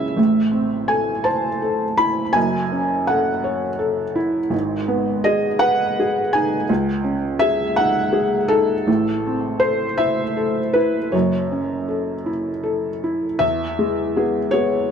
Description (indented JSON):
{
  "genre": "neoclassical minimalist piano",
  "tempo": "55 BPM (dotted quarters)",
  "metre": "6/8",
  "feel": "rubato",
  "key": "unclear",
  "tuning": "A4 = 439 Hz",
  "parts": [
    { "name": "felt-muted upright piano", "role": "solo", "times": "0.0-14.9 s", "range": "F#1 to B5", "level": "-18 LUFS", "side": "equal", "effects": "tape echo" }
  ],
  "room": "moderate plate reverb, RT60 2.7 s",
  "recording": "none",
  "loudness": "-18 LUFS",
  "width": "side -7 dB against mid",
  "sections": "0.0-13.4 A section; 13.4-14.9 B section",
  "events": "none",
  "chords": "0.2 Am; 2.4 F#m7; 4.5 G#m; 6.7 C#sus2; 8.9 Am; 11.1 F#m7; 13.4 E",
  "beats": "| 0.18 1.27 | 2.36 3.45 | 4.53 5.62 | 6.69 7.77 | 8.88 9.99 | 11.13 12.28 | 13.43 14.54"
}